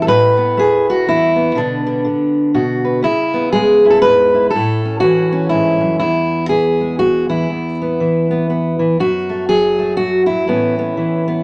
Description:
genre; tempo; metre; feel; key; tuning
folk, solo fingerstyle acoustic guitar; 121 BPM; 3/4; swing 60% on 8ths; E mixolydian; A4 = 439 Hz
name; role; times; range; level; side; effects
fingerpicked steel-string acoustic guitar; solo; 0.0-11.4 s; E2 to B4; -15 LUFS; equal; none
room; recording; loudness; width
wet studio reverb, RT60 0.6 s; none; -15 LUFS; mono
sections
0.0-6.0 A section; 6.0-11.4 B section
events
none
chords
0.1 Asus2; 1.6 Bm; 3.0 C#m7; 4.5 A; 6.0 E; 7.5 E5; 9.0 F#m; 10.5 Aadd9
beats
| 0.09 0.58 1.07 | 1.57 2.06 2.56 | 3.05 3.54 4.04 | 4.53 5.03 5.52 | 6.02 6.51 7.01 | 7.50 8.00 8.49 | 8.99 9.49 9.98 | 10.48 10.98

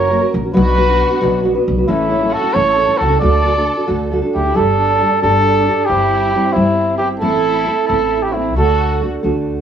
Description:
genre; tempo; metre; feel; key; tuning
mexican folk, mariachi; 90 BPM (dotted quarters); 6/8; straight; D major; A4 = 440 Hz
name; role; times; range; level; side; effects
mellow trumpet; melody; 0.0-9.0 s; E4 to D5; -15 LUFS; right 2 dB; cassette tape, plate reverb
dark studio violin section; second line; 0.0-9.0 s; C4 to A#4; -25 LUFS; right 3 dB; cassette tape, plate reverb
nylon-string guitar; accompaniment; 0.0-9.6 s; A2 to C5; -19 LUFS; equal; cassette tape, plate reverb
upright bass; bass; 0.0-9.6 s; F#1 to D2; -20 LUFS; equal; none
room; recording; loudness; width
moderate studio reverb, RT60 0.5 s; home recording on cassette; -12 LUFS; side -8 dB against mid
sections
0.0-4.6 A section; 4.6-9.6 B section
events
none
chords
0.0 F#; 0.6 Bm; 1.9 A; 3.2 D; 4.6 Gsus2; 5.9 C/G; 7.2 Am; 8.6 D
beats
| 0.56 1.22 | 1.88 2.55 | 3.22 3.89 | 4.56 5.23 | 5.90 6.56 | 7.22 7.89 | 8.56 9.24

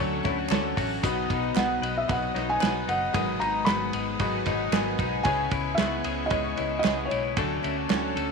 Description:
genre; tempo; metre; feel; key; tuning
jangly indie pop; 114 BPM; 4/4; straight; B major; A4 = 440 Hz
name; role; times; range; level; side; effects
felt-muted upright piano; melody; 0.0-8.3 s; A4 to B5; -29 LUFS; equal; none
clear upright piano; accompaniment; 0.0-8.3 s; D4 to G#5; -32 LUFS; left 11 dB; none
picked steel-string acoustic guitar; accompaniment; 0.0-8.3 s; G#2 to E4; -34 LUFS; right 11 dB; none
warm studio string section; sustained chords; 0.0-8.3 s; E4 to D#6; -36 LUFS; equal; none
twelve-string electric guitar; arpeggios; 0.0-8.3 s; G#2 to B4; -32 LUFS; left 12 dB; tape echo
vintage muted fingered electric bass; bass; 0.0-8.3 s; F#1 to D2; -35 LUFS; left 1 dB; none
loose indie drum kit; drums; 0.2-8.3 s; hi-hat, kick drum, ride cymbal, snare drum; -30 LUFS; right 5 dB; none
group handclap; percussion; 0.5-8.0 s; none; -40 LUFS; right 12 dB; none
room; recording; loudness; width
light reverb; 1960s-style stereo with parts hard left and right; -24 LUFS; side -4 dB against mid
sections
0.0-8.3 A section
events
upright piano fill 4.2-5.3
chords
0.0 Dmaj7; 1.0 B; 3.1 G#m7; 5.3 C#m7; 7.4 Dmaj7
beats
0.51 | 1.04 1.56 2.09 2.62 | 3.15 3.67 4.20 4.73 | 5.25 5.78 6.31 6.84 | 7.37 7.89

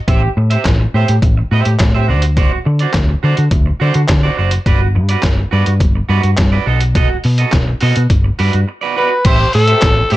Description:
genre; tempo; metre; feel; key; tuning
disco; 105 BPM; 4/4; straight; G major; A4 = 439 Hz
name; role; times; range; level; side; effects
electric guitar at the edge of break-up; accompaniment; 0.1-10.2 s; F#4 to E5; -19 LUFS; right 6 dB; wide subtle chorus
hollow-body short-scale picked electric bass; bass; 0.1-10.2 s; F#1 to D3; -13 LUFS; equal; none
trip hop sampler-style drum kit; drums; 0.1-10.2 s; crash cymbal, handclaps, hi-hat, kick drum, snare drum; -15 LUFS; equal; none
breathy tenor saxophone; melody; 9.0-10.2 s; G4 to C5; -13 LUFS; equal; none
room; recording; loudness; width
digital ambience; none; -11 LUFS; side -16 dB against mid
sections
0.0-9.2 A section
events
break 8.7-9.2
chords
0.1 Am7; 2.1 D7; 4.7 Gmaj7; 6.7 B7; 8.1 Gmaj7; 9.2 Am7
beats
| 0.08 0.65 1.23 1.80 | 2.37 2.94 3.52 4.09 | 4.66 5.23 5.81 6.38 | 6.95 7.53 8.10 8.67 | 9.25 9.82

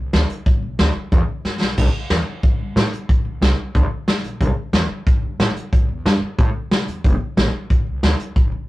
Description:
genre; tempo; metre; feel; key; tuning
rockabilly; 182 BPM; 4/4; straight; C major; A4 = 441 Hz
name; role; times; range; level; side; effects
upright bass; bass; 0.0-8.7 s; F1 to C3; -21 LUFS; equal; none
vintage brush drum kit; drums; 0.1-8.4 s; crash cymbal, hi-hat, kick drum, snare drum; -18 LUFS; equal; none
room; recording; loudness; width
light reverb; rough rehearsal-room recording, warm saturation; -16 LUFS; side -18 dB against mid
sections
0.0-1.8 A section; 1.8-8.7 A section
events
drum fill 1.4-1.8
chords
none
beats
0.14 | 0.46 0.79 1.12 1.45 | 1.78 2.11 2.44 2.76 | 3.09 3.42 3.75 4.08 | 4.41 4.74 5.07 5.40 | 5.73 6.06 6.38 6.71 | 7.04 7.37 7.70 8.03 | 8.36

